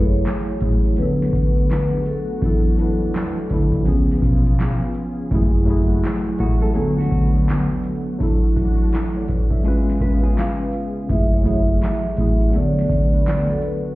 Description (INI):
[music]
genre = lo-fi hip hop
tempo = 83 BPM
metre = 4/4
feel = swing 62% on 16ths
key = F# minor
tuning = A4 = 437 Hz
[part]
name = vibraphone with soft mallets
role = melody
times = 0.0-3.5, 10.4-13.9 s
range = G#4 to E#5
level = -26 LUFS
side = equal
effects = analog delay
[part]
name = mellow tine electric piano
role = accompaniment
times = 0.0-13.9 s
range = E3 to E#5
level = -23 LUFS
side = equal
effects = medium stereo tremolo, cassette tape
[part]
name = lush unison pad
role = sustained chords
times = 0.0-13.9 s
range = C#3 to G#4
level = -29 LUFS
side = equal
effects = chorus
[part]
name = fingered electric bass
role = bass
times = 0.0-13.5 s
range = F#1 to E2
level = -21 LUFS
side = equal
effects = none
[part]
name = booming analog drum machine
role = drums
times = 0.2-13.8 s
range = handclaps, hi-hat, kick drum, snare drum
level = -20 LUFS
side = equal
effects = none
[part]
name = nylon-string guitar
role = second line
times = 6.4-11.1 s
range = F#4 to B4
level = -32 LUFS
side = right 2 dB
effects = analog delay
[part]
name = tambourine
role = percussion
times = 11.8-13.5 s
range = none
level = -69 LUFS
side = right 7 dB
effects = none
[sound]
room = light reverb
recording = heard muffled through a wall, stone room reverb, EQ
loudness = -17 LUFS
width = side -18 dB against mid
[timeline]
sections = 0.0-13.9 A section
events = none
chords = 0.0 F#m9; 1.0 D6; 3.9 C#7; 5.3 F#m9; 6.8 D6; 8.2 E9sus4; 9.6 C#7; 11.1 F#m9; 12.5 D6